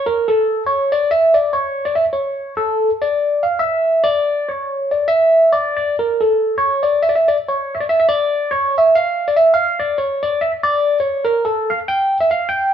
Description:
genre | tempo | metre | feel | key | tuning
balkan folk | 284 BPM (eighths) | 7/8 | straight | D harmonic minor | A4 = 439 Hz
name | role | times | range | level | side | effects
overdriven tine electric piano | solo | 0.0-12.7 s | A4 to G5 | -14 LUFS | equal | phaser
room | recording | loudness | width
wet stone room reverb, RT60 0.9 s | band playing live in one room | -14 LUFS | side -9 dB against mid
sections
0.0-6.0 A section; 6.0-12.7 A section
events
none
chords
none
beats
| 0.05 0.27 0.48 0.69 0.90 1.11 1.32 | 1.53 1.75 1.96 2.17 2.38 2.59 2.81 | 3.02 3.23 3.44 3.65 3.86 4.08 4.29 | 4.50 4.71 4.92 5.13 5.34 5.56 5.77 | 5.98 6.19 6.40 6.61 6.82 7.04 7.25 | 7.46 7.67 7.88 8.09 8.30 8.51 8.72 | 8.93 9.14 9.35 9.56 9.77 9.98 10.19 | 10.40 10.61 10.82 11.03 11.24 11.45 11.66 | 11.87 12.08 12.29 12.50 12.71

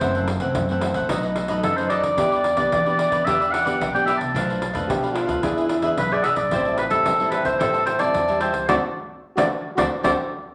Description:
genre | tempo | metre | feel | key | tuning
samba and choro | 111 BPM | 4/4 | straight | unclear | A4 = 440 Hz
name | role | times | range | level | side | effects
warm oboe | melody | 0.0-10.1 s | A4 to A5 | -24 LUFS | equal | none
cavaquinho | accompaniment | 0.0-10.1 s | D4 to A5 | -30 LUFS | equal | none
nylon-string guitar | accompaniment | 0.0-10.1 s | F#2 to G#4 | -30 LUFS | equal | none
upright bass | bass | 0.0-10.1 s | F#1 to E3 | -34 LUFS | equal | none
pandeiro | percussion | 0.0-10.2 s | none | -30 LUFS | equal | none
breathy trombone | second line | 4.9-10.1 s | E4 to G4 | -28 LUFS | equal | none
room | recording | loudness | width
wet large studio reverb, RT60 1.0 s | none | -21 LUFS | mono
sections
0.0-10.5 A section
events
band accent 8.7-10.5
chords
0.0 F#m7b5; 1.1 B7; 2.2 Em7; 4.4 Bm7b5; 5.4 E7; 6.5 Am7; 8.7 D7(no3)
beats
| 0.01 0.56 1.10 1.64 | 2.18 2.72 3.27 3.81 | 4.35 4.89 5.43 5.98 | 6.52 7.06 7.61 8.15 | 8.69 9.23 9.78

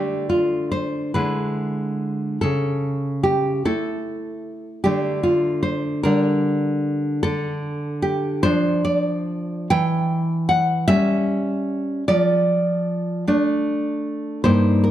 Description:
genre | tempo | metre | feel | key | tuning
romantic piece for solo classical guitar | 50 BPM (dotted quarters) | 6/8 | uneven beats, rubato | D minor | A4 = 440 Hz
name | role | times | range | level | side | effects
nylon-string guitar | solo | 0.0-14.9 s | G2 to G5 | -19 LUFS | equal | none
room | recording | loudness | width
moderate recital hall reverb, RT60 1.6 s | dark, warm production | -19 LUFS | side -12 dB against mid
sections
0.0-14.9 A section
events
none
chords
0.0 D5; 1.2 E7/D; 2.4 A/C#; 4.9 D5; 6.1 Gm/D; 7.2 Dm; 9.7 C#dim/E; 12.1 Dm/F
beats
1.16 | 2.42 3.65 | 4.86 6.06 | 7.24 8.44 | 9.71 10.88 | 12.07 13.28 | 14.45

